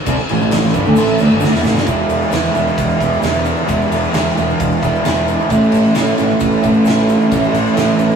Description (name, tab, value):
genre	garage rock duo or trio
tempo	132 BPM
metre	4/4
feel	straight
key	E mixolydian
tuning	A4 = 440 Hz
part	crunchy overdriven guitar	riff	0.1-8.2 s	G2 to E4	-13 LUFS	right 1 dB	none
part	growling picked electric bass	bass	0.1-8.1 s	E1 to A2	-21 LUFS	equal	overdrive
part	oversized low-tuned drum kit	drums	0.1-8.1 s	crash cymbal, kick drum, ride cymbal, snare drum	-20 LUFS	equal	none
part	egg shaker	percussion	0.1-8.2 s	none	-40 LUFS	left 6 dB	none
room	light reverb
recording	rough rehearsal-room recording, small room ambience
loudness	-12 LUFS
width	side -6 dB against mid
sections	0.0-1.9 A section; 1.9-8.2 B section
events	drum fill 1.4-1.9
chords	0.0 A5; 1.9 E; 5.5 A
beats	| 0.05 0.50 0.96 1.41 | 1.86 2.32 2.77 3.22 | 3.68 4.13 4.59 5.04 | 5.49 5.95 6.40 6.85 | 7.30 7.76